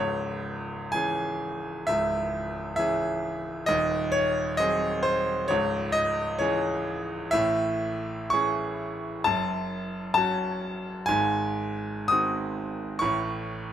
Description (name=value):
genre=classical, romantic character piece for solo piano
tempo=57-68 BPM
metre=4/4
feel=rubato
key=unclear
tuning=A4 = 441 Hz
part: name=bright concert grand piano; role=solo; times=0.0-13.7 s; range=C#1 to D#6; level=-25 LUFS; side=equal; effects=none
room=moderate large studio reverb, RT60 1.2 s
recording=minimal, uncompressed stereo recording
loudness=-25 LUFS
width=side -10 dB against mid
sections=0.0-13.7 A section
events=none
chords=0.0 C#m; 3.7 G#7/D#; 5.5 C#m; 7.3 Amaj7; 9.3 F#m; 11.1 G#7; 13.0 A